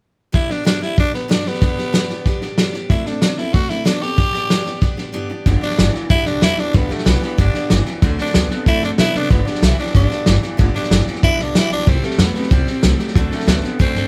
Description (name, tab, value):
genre	rockabilly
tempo	187 BPM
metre	4/4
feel	straight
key	G major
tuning	A4 = 442 Hz
part	growling tenor saxophone	melody	0.3-14.1 s	A3 to G4	-24 LUFS	equal	none
part	picked steel-string acoustic guitar	accompaniment	0.3-14.1 s	G2 to A4	-30 LUFS	equal	none
part	electric guitar through a small old amp	riff	0.3-14.1 s	G2 to B3	-29 LUFS	equal	none
part	vintage drum kit	drums	0.3-14.0 s	hi-hat, kick drum, snare drum	-19 LUFS	equal	none
part	upright bass	bass	5.5-14.1 s	G1 to C3	-22 LUFS	equal	none
room	light reverb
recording	band playing live in one room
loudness	-17 LUFS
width	mono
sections	0.3-5.5 A section; 5.5-14.1 B section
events	break 5.1-5.5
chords	0.3 G; 2.9 D7; 4.2 G; 8.0 D7; 9.3 G; 11.9 C; 13.2 D7